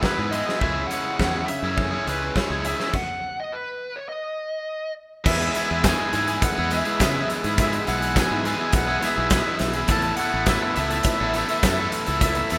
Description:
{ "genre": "indie rock", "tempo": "104 BPM", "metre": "4/4", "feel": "straight", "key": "E major", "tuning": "A4 = 440 Hz", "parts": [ { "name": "bluesy overdriven lead guitar", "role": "melody", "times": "0.0-12.6 s", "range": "B4 to A5", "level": "-31 LUFS", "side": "equal", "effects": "distortion" }, { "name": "overdriven electric guitar", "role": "riff", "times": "0.0-12.6 s", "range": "C#3 to A4", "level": "-27 LUFS", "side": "equal", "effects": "none" }, { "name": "big rock drum kit", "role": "drums", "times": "0.0-12.6 s", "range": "crash cymbal, hi-hat, kick drum, snare drum", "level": "-27 LUFS", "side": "equal", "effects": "none" }, { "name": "modern bright fingered electric bass", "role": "bass", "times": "0.2-12.6 s", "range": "A1 to C#3", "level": "-31 LUFS", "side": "equal", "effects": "none" }, { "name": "glockenspiel with soft plastic mallets", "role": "second line", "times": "5.3-12.6 s", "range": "E6 to A6", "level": "-35 LUFS", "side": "equal", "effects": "none" }, { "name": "tonewheel organ", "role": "sustained chords", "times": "5.3-12.6 s", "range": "A2 to F#4", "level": "-42 LUFS", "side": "equal", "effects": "none" }, { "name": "overdriven electric guitar", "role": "riff", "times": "5.4-12.4 s", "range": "G#3 to A4", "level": "-36 LUFS", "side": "equal", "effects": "none" }, { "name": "tambourine", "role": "percussion", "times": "5.6-12.6 s", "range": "none", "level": "-42 LUFS", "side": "equal", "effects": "none" } ], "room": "small room ambience", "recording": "rough home demo mix", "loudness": "-23 LUFS", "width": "mono", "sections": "0.0-5.3 A section; 5.3-12.6 B section", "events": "stop 2.9-5.3", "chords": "0.0 E; 0.6 C#m; 2.9 N.C.; 5.3 E; 9.9 Asus2" }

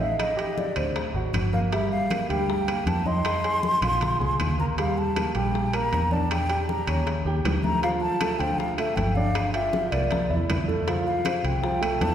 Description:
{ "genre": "Afro-Cuban jazz", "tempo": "157 BPM", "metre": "4/4", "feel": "straight", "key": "unclear", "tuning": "A4 = 443 Hz", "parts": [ { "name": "breathy mellow concert flute", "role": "melody", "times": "0.0-12.1 s", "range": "D5 to C6", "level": "-28 LUFS", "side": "left 1 dB", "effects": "none" }, { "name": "warm baby grand piano", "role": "accompaniment", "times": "0.0-12.1 s", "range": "F3 to Ab5", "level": "-29 LUFS", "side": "right 2 dB", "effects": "none" }, { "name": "fingered electric bass", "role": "bass", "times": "0.0-12.1 s", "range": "G1 to F2", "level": "-28 LUFS", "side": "equal", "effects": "none" }, { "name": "congas", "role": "percussion", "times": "0.0-12.1 s", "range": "none", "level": "-32 LUFS", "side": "equal", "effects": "none" }, { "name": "bongos", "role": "percussion", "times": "0.2-12.1 s", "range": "none", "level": "-36 LUFS", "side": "left 5 dB", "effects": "none" }, { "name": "claves", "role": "percussion", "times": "0.2-12.0 s", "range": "none", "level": "-43 LUFS", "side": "left 3 dB", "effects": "none" }, { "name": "timbales", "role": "percussion", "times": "0.2-12.1 s", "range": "none", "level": "-34 LUFS", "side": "right 3 dB", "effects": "none" } ], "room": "wet concert hall reverb, RT60 2.5 s", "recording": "recorded in a church or concert hall", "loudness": "-22 LUFS", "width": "side -9 dB against mid", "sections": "0.0-10.9 A section; 10.9-12.1 B section", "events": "drum fill 3.6-4.8, 10.1-10.9", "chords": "0.2 Am7b5; 1.0 Daug7; 1.7 Gm7; 3.3 Fm7; 4.0 Bbsus2; 4.8 Eb; 6.3 Em7b5; 7.1 Eb7#11; 7.8 Dmadd11; 9.4 Gm7; 10.1 C13; 10.9 Fadd9" }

